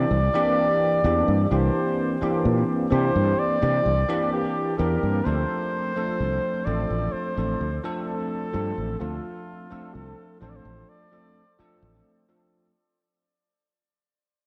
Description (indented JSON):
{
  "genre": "vaporwave",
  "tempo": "64 BPM",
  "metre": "4/4",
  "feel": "straight",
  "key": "D minor",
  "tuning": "A4 = 444 Hz",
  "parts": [
    { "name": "breathy flugelhorn", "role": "melody", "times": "0.0-11.8 s", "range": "F4 to D5", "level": "-29 LUFS", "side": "equal", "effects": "vintage 12-bit sampler grit, tape echo" },
    { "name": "bell-like tine electric piano", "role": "accompaniment", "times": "0.0-12.7 s", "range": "E3 to A4", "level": "-29 LUFS", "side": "equal", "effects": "analog chorus, vintage 12-bit sampler grit, delay" },
    { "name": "fretless electric bass", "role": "bass", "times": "0.0-12.0 s", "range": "A1 to C3", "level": "-27 LUFS", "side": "equal", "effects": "none" }
  ],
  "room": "wet lush hall reverb, RT60 2.8 s",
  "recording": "dreamy mix soaked in reverb",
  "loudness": "-24 LUFS",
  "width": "mono",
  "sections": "0.0-12.8 A section",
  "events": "fade-out 2.8-12.8",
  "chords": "0.0 C9; 5.3 Dm7"
}